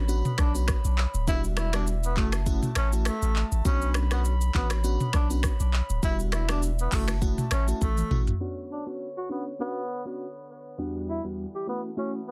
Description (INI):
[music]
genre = afrobeats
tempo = 101 BPM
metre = 4/4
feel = swing 55% on 16ths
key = B minor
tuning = A4 = 440 Hz
[part]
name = crystalline FM electric piano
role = accompaniment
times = 0.0-12.2 s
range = E2 to F#4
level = -36 LUFS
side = equal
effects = chorus, tremolo
[part]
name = warm brass ensemble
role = sustained chords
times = 0.0-12.3 s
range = D3 to B5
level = -42 LUFS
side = equal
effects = none
[part]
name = punchy sub bass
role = bass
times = 0.0-8.3 s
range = D1 to B1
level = -28 LUFS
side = equal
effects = none
[part]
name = afro-pop drum kit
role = drums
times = 0.1-8.4 s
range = finger snaps, handclaps, hi-hat, kick drum, rim click, shaker, toms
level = -30 LUFS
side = equal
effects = soft clipping on snare
[part]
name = breathy tenor saxophone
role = melody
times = 0.4-12.3 s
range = A3 to G4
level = -36 LUFS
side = equal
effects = delay
[sound]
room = light reverb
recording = dense, heavily limited modern master, low-pass filter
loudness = -27 LUFS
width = mono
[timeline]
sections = 0.0-8.4 A section; 8.4-12.3 B section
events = drum fill 7.8-8.4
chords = 0.0 Bmadd9; 1.3 Em7; 2.2 F#m7; 3.7 Bmadd9; 6.0 Em7; 6.9 F#m7; 8.4 Bmadd9; 10.8 Em7; 11.7 F#m7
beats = 0.09 0.68 | 1.28 1.87 2.46 3.06 | 3.65 4.25 4.84 5.44 | 6.03 6.62 7.22 7.81 | 8.41 9.00 9.59 10.19 | 10.78 11.38 11.97